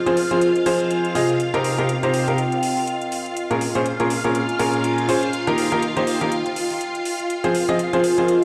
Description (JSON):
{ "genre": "piano house", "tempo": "122 BPM", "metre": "4/4", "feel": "swing 57% on 16ths", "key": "unclear", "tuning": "A4 = 440 Hz", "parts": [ { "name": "string machine, violins", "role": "sustained chords", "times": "0.0-8.4 s", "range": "F4 to F5", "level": "-28 LUFS", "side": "equal", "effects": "ensemble chorus" }, { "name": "warbly tape-like pad", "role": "texture", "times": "0.0-8.4 s", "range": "C4 to Ab5", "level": "-27 LUFS", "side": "equal", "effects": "chorus, built-in reverb" }, { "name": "clear upright piano", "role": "riff", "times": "0.1-8.3 s", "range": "Bb2 to Eb5", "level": "-23 LUFS", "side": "equal", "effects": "digital delay" }, { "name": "electronic hi-hat", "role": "drums", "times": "0.1-8.4 s", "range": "none", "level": "-35 LUFS", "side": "equal", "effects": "overdrive" } ], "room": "wet lush hall reverb, RT60 2.2 s", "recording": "played on a big sound system in a bare room, large studio reverb", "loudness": "-21 LUFS", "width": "mono", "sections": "0.0-8.4 A section", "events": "none", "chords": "0.0 Fm; 1.4 Cm7; 3.4 Bbm7; 5.3 Eb; 7.1 Fm" }